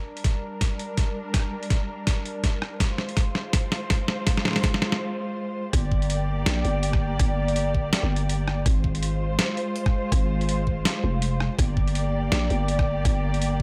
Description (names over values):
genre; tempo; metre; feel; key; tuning
half-time drum and bass; 164 BPM; 4/4; swing 58% on 16ths, half-time; G phrygian; A4 = 440 Hz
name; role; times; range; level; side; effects
muted studio string section; sustained chords; 0.0-13.6 s; G3 to D5; -32 LUFS; equal; sidechain pumping
boom bap sampler-style drum kit; drums; 0.2-13.5 s; hi-hat, rim click, snare drum; -30 LUFS; equal; none
electronic kick drum; drums; 0.2-13.6 s; none; -26 LUFS; equal; none
growling 808-style bass; bass; 5.7-13.6 s; F1 to Bb1; -27 LUFS; equal; none
room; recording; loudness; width
light reverb, digital ambience; none; -25 LUFS; mono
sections
0.0-5.7 A section; 5.7-13.6 B section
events
build-up 0.0-5.7; drum fill 0.0-5.0; break 5.0-5.7; drop 5.7-13.6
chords
0.0 Gm; 2.8 Ab6; 5.7 Gm; 8.7 Ab6; 11.6 Gm